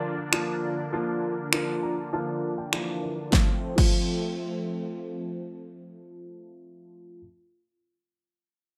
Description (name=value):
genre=dance-pop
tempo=100 BPM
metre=4/4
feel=straight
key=F major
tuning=A4 = 440 Hz
part: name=warm concert grand piano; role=accompaniment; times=0.0-7.2 s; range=E3 to Bb5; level=-34 LUFS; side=equal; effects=analog chorus, sidechain pumping, low-pass filter
part: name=lush unison pad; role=sustained chords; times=0.0-6.5 s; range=D3 to D4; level=-37 LUFS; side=equal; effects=chorus, sidechain pumping, low-pass filter
part: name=deep house drum kit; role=drums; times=0.3-3.9 s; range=crash cymbal, finger snaps, kick drum, snare drum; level=-25 LUFS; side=equal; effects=gated reverb
room=light reverb, digital ambience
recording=bright 1980s-style digital production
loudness=-28 LUFS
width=mono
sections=0.0-3.3 A section; 3.3-5.7 B section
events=filter sweep 0.0-3.3; grand piano fill 1.5-3.3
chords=0.0 Bb; 3.3 F